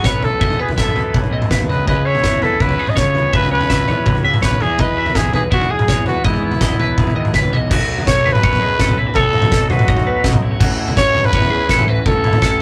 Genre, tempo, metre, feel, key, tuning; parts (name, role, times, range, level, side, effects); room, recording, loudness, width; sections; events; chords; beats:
math rock and midwest emo; 165 BPM; 4/4; straight; A4 = 440 Hz
growling trumpet; melody; 0.0-12.6 s; E4 to D#5; -21 LUFS; equal; analog delay
twelve-string electric guitar; accompaniment; 0.0-12.6 s; E2 to F#4; -28 LUFS; equal; spring reverb
twelve-string electric guitar; arpeggios; 0.0-12.6 s; E4 to E5; -24 LUFS; equal; phaser
fuzz picked electric bass; bass; 0.0-12.6 s; F#1 to G#2; -24 LUFS; equal; overdrive
loose indie drum kit; drums; 0.0-12.5 s; crash cymbal, kick drum, snare drum, toms; -19 LUFS; equal
moderate small room reverb, RT60 0.5 s; rough rehearsal-room recording; -16 LUFS; mono
0.0-7.7 A section; 7.7-12.6 B section
drum fill 7.5
0.0 B7sus4; 1.9 B13sus4; 7.7 B9; 10.6 A69
0.06 | 0.42 0.79 1.15 1.52 | 1.88 2.25 2.61 2.98 | 3.34 3.70 4.07 4.43 | 4.80 5.16 5.53 5.89 | 6.25 6.62 6.98 7.34 | 7.71 8.07 8.43 8.80 | 9.16 9.52 9.88 10.25 | 10.61 10.97 11.33 11.70 | 12.06 12.42